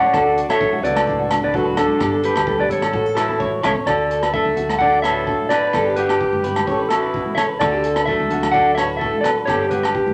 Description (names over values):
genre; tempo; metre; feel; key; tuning
highlife guitar band; 128 BPM; 4/4; straight; D major; A4 = 440 Hz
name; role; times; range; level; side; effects
mellow electric guitar; melody; 0.0-10.1 s; D4 to F#5; -22 LUFS; equal; none
bright trumpet; second line; 0.0-10.1 s; D4 to D5; -30 LUFS; equal; none
nylon-string guitar; accompaniment; 0.0-10.1 s; F#2 to A4; -30 LUFS; equal; none
electric guitar through a small old amp; arpeggios; 0.0-10.1 s; F#4 to D5; -25 LUFS; equal; none
congas; percussion; 0.0-10.1 s; none; -34 LUFS; equal; none
fingered electric bass; bass; 0.1-10.1 s; G1 to D2; -32 LUFS; equal; none
crunchy breakbeat drum kit; drums; 0.1-10.1 s; hi-hat, kick drum, rim click; -32 LUFS; equal; none
agogo bells; percussion; 0.1-10.0 s; none; -26 LUFS; equal; none
room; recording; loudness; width
wet large studio reverb, RT60 0.9 s; none; -18 LUFS; mono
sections
0.0-3.9 A section; 3.9-10.1 B section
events
drum fill 3.4-3.9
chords
0.1 D; 2.0 G; 2.9 A; 3.9 D; 5.7 G; 6.7 A; 7.6 D; 9.5 G